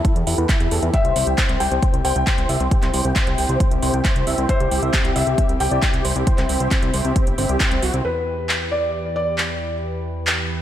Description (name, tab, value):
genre	uplifting trance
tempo	135 BPM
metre	4/4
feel	straight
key	E minor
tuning	A4 = 440 Hz
part	dense compressed supersaw	melody	0.0-8.0 s	C4 to G5	-26 LUFS	right 1 dB	sidechain pumping, low-pass filter
part	lush unison pad	sustained chords	0.0-10.6 s	C3 to B4	-27 LUFS	left 1 dB	chorus, sidechain pumping
part	electronic kick drum	drums	0.0-7.7 s	none	-20 LUFS	equal	none
part	house drum kit	drums	0.0-10.4 s	handclaps, hi-hat	-24 LUFS	right 1 dB	sidechain pumping on hats, sidechain pumping on cymbals
part	fat analog bass	bass	0.2-10.6 s	G1 to E2	-23 LUFS	equal	sidechain pumping
part	felt-muted upright piano	second line	0.9-9.7 s	B4 to G5	-24 LUFS	left 3 dB	tape echo
room	light reverb, digital ambience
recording	none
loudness	-17 LUFS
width	side -11 dB against mid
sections	0.0-8.0 A section; 8.0-10.6 B section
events	filter sweep on analog synth pad 0.0-8.0, 8.0-10.6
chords	0.0 Em; 0.9 C; 8.0 Em